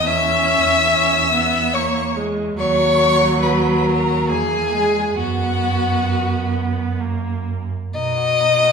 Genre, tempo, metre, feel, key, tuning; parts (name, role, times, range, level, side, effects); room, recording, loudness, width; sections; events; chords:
classical, slow romantic movement for string quartet; 64-73 BPM; 3/4; rubato; B major; A4 = 440 Hz
warm violin; melody; 0.0-8.7 s; D#4 to E6; -21 LUFS; left 5 dB
warm violin; second line; 0.0-8.7 s; F#4 to E5; -19 LUFS; left 2 dB
rich viola; accompaniment; 0.0-7.7 s; F#3 to C#4; -22 LUFS; right 2 dB
dark cello; bass; 0.0-8.7 s; D#2 to B2; -23 LUFS; right 4 dB
wet recital hall reverb, RT60 1.4 s; recorded in a church or concert hall; -16 LUFS; side -5 dB against mid
0.0-7.9 A section
0.1 E6; 2.6 D#m7; 4.3 E; 5.2 B5/F#; 7.0 F#; 7.9 B